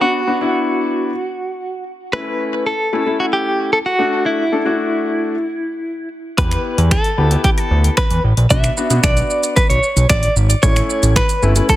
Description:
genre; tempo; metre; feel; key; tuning
dance-pop; 113 BPM; 4/4; straight; unclear; A4 = 440 Hz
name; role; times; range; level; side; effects
direct-recorded clean electric guitar; melody; 0.0-11.8 s; E4 to E5; -18 LUFS; right 1 dB; tremolo, digital delay
clear concert grand piano; accompaniment; 0.0-11.8 s; A3 to A4; -21 LUFS; left 3 dB; sidechain pumping
fat analog bass; bass; 6.4-11.6 s; G1 to B2; -15 LUFS; equal; sidechain pumping
punchy analog drum machine; drums; 6.4-11.8 s; finger snaps, hi-hat, kick drum, shaker; -17 LUFS; equal; overdrive, soft clipping on snare
room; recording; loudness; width
light reverb, digital ambience; dense, heavily limited modern master; -14 LUFS; side -14 dB against mid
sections
0.0-11.8 A section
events
none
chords
0.0 Bm; 2.1 A; 4.0 D; 6.4 Em; 8.5 Bm; 10.6 A

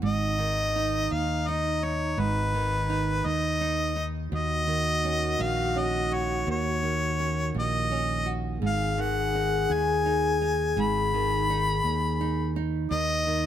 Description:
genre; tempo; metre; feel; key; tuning
acoustic folk-pop ballad; 56 BPM (dotted quarters); 6/8; straight; G# minor; A4 = 440 Hz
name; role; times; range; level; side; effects
mellow French horn; second line; 0.0-13.5 s; D#4 to G#4; -32 LUFS; left 3 dB; none
nylon-string guitar; accompaniment; 0.0-13.5 s; D#2 to F#4; -32 LUFS; right 8 dB; none
fingered electric bass; bass; 0.0-13.5 s; G#1 to D#2; -30 LUFS; left 1 dB; none
warm harmonica; melody; 0.1-13.5 s; B4 to B5; -28 LUFS; left 2 dB; none
room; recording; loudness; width
light reverb; none; -24 LUFS; side -10 dB against mid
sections
0.0-13.5 A section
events
none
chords
0.0 G#m; 4.3 D#m7; 8.6 G#m; 12.9 N.C.

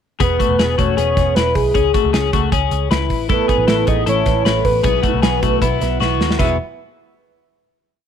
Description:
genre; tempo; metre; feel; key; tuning
jangly indie pop; 155 BPM; 4/4; straight; E major; A4 = 440 Hz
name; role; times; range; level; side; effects
soft octave-layered synth lead; melody; 0.2-6.6 s; G#4 to E5; -19 LUFS; left 1 dB; chorus, phaser, slapback echo
twelve-string electric guitar; arpeggios; 0.2-6.6 s; A3 to B4; -20 LUFS; left 12 dB; slapback echo
vintage muted picked electric bass; bass; 0.2-6.6 s; E1 to D#2; -21 LUFS; right 2 dB; none
modern studio drum kit; drums; 0.2-6.5 s; crash cymbal, hi-hat, kick drum, snare drum; -20 LUFS; right 1 dB; none
picked twelve-string acoustic guitar; accompaniment; 3.3-6.6 s; B2 to B4; -22 LUFS; right 16 dB; wide subtle chorus
room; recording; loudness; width
light reverb, studio reverb; 1960s-style stereo with parts hard left and right; -14 LUFS; side -8 dB against mid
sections
0.2-6.4 verse; 6.4-7.9 final chord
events
drum fill 6.0-6.4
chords
0.2 Eadd9; 1.8 C#m; 3.1 Asus2; 4.8 Bsus4; 6.4 Esus2

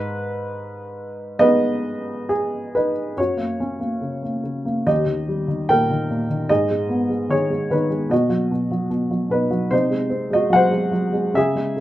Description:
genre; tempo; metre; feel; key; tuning
classical, lyrical solo piano; 66-75 BPM; 4/4; rubato; G# minor; A4 = 435 Hz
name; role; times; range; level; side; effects
dark upright piano; solo; 0.0-11.8 s; D#2 to G5; -19 LUFS; equal; none
room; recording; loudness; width
light reverb; close, detailed microphones; -18 LUFS; side -14 dB against mid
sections
0.0-3.2 A section; 3.2-11.8 B section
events
none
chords
0.0 G#m; 3.2 F#; 4.9 D#; 6.5 G#m; 8.1 B; 9.7 G#7/B#

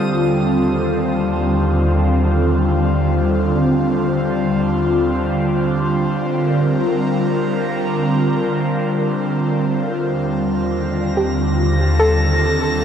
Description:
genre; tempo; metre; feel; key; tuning
ambient; free time; none; none; unclear; A4 = 440 Hz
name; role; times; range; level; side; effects
airy breathy pad; sustained chords; 0.0-12.8 s; Eb2 to Bb4; -16 LUFS; equal; chorus, phaser
drifting glass-harmonics texture; texture; 0.0-0.1, 11.1-12.8 s; Bb6; -28 LUFS; left 2 dB; chorus, built-in reverb
soft round pluck; arpeggios; 11.2-12.8 s; G4 to A4; -20 LUFS; equal; chorus, diffuse ambient delay
room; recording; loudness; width
wet huge ambient reverb, RT60 7.9 s; dark, warm production; -15 LUFS; side -8 dB against mid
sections
0.1-12.8 A section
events
none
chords
0.1 Eb69; 5.1 Bb69; 10.1 Eb69

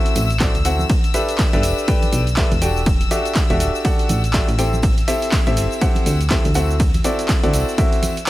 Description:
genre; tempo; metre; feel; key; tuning
piano house; 122 BPM; 4/4; swing 59% on 16ths; A dorian; A4 = 440 Hz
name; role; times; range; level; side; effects
warm chamber string section; sustained chords; 0.0-8.3 s; E6; -29 LUFS; left 6 dB; sidechain pumping
clear concert grand piano; riff; 0.0-8.3 s; C4 to G5; -22 LUFS; equal; sidechain pumping, dub echo
punchy analog drum machine; drums; 0.1-8.3 s; cabasa, handclaps, hi-hat, ride cymbal; -26 LUFS; right 1 dB; overdrive
tambourine and congas; percussion; 0.1-8.3 s; none; -32 LUFS; right 2 dB; none
solid FM bass; bass; 0.2-7.6 s; D1 to D2; -20 LUFS; equal; sidechain pumping
electronic kick drum; drums; 0.4-7.9 s; none; -19 LUFS; equal; overdrive
room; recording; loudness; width
digital ambience; none; -15 LUFS; side -16 dB against mid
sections
0.0-8.3 A section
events
none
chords
0.0 D9; 0.9 G69; 2.6 Em11; 4.6 Am7; 6.6 D9

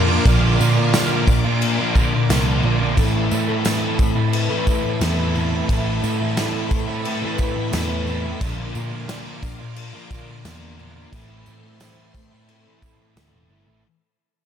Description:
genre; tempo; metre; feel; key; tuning
rock, shoegaze and dream pop; 88 BPM; 4/4; straight; A minor; A4 = 440 Hz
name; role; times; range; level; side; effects
phased string machine; sustained chords; 0.0-13.8 s; A4 to D6; -30 LUFS; right 1 dB; ensemble chorus, phaser
picked twelve-string acoustic guitar; arpeggios; 0.0-13.8 s; A3 to B4; -32 LUFS; left 11 dB; wide subtle chorus, digital delay
crunchy overdriven guitar; riff; 0.0-13.8 s; A2 to F4; -24 LUFS; right 9 dB; reverse reverb
thick fuzz guitar; riff; 0.0-13.8 s; A2 to Bb3; -25 LUFS; left 8 dB; distortion, ensemble chorus
vintage muted picked electric bass; bass; 0.0-13.8 s; E1 to Bb2; -24 LUFS; equal; none
loose indie drum kit; drums; 0.3-13.3 s; crash cymbal, kick drum, snare drum; -23 LUFS; equal; none
tambourine; percussion; 0.3-13.3 s; none; -36 LUFS; right 14 dB; none
room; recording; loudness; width
light reverb, small room ambience; none; -17 LUFS; side -9 dB against mid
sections
0.0-13.8 A section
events
fade-out 0.0-13.8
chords
0.0 Bb; 3.0 Amadd9; 8.4 Bb; 11.1 Am

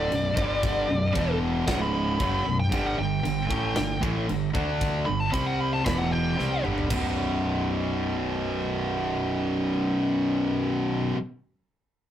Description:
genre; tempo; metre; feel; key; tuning
heavy metal; 114 BPM; 4/4; straight; B phrygian; A4 = 445 Hz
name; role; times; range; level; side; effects
high-gain lead guitar; melody; 0.0-6.6 s; D5 to B5; -29 LUFS; equal; distortion
heavy high-gain guitar; riff; 0.0-11.2 s; B1 to D4; -30 LUFS; left 4 dB; distortion
heavy high-gain guitar; riff; 0.0-11.2 s; B1 to D4; -28 LUFS; right 3 dB; distortion
fuzz fingered electric bass; bass; 0.0-11.1 s; B0 to D2; -32 LUFS; equal; overdrive
tight metal drum kit; drums; 0.1-7.0 s; china cymbal, crash cymbal, kick drum, snare drum, toms; -32 LUFS; equal; none
room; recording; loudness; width
moderate small room reverb, RT60 0.5 s; rough rehearsal-room recording, tube saturation; -24 LUFS; side -10 dB against mid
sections
0.0-6.9 A section; 6.9-11.1 B section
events
lead electric guitar solo 0.0-6.9; drum fill 6.4-6.9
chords
0.4 G5; 0.9 Bm; 1.1 E5; 1.7 C#5; 2.2 B5; 2.7 G5; 4.5 D5; 5.1 G5; 5.3 C5; 5.9 E5; 6.4 G5; 6.9 B5

